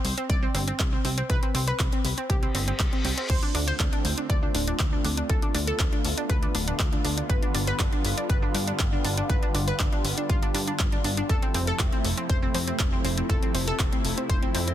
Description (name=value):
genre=progressive house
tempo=120 BPM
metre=4/4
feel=straight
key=D dorian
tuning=A4 = 440 Hz
part: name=plucky analog bass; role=bass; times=0.0-14.7 s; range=D1 to G2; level=-30 LUFS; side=equal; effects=sidechain pumping
part: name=pop drum kit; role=drums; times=0.0-14.7 s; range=crash cymbal, handclaps, hi-hat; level=-31 LUFS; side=equal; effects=overdrive
part: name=analog pluck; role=arpeggios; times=0.2-14.7 s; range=C4 to D5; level=-30 LUFS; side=equal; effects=chorus, sidechain pumping, ping-pong delay
part: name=electronic kick drum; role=drums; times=0.3-14.4 s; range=none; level=-25 LUFS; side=equal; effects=none
part: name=reverse cymbal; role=sound effects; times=2.5-3.3 s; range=none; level=-36 LUFS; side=left 2 dB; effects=none
part: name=lush unison pad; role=sustained chords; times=3.3-14.7 s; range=C3 to F4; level=-32 LUFS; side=equal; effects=chorus, phaser, sidechain pumping
room=little or no reverb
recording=dense, heavily limited modern master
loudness=-23 LUFS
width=side -12 dB against mid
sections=0.0-14.7 A section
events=reverse cymbal 2.5-3.3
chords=0.0 C5; 3.3 Dm7; 7.3 G7; 11.3 Fmaj7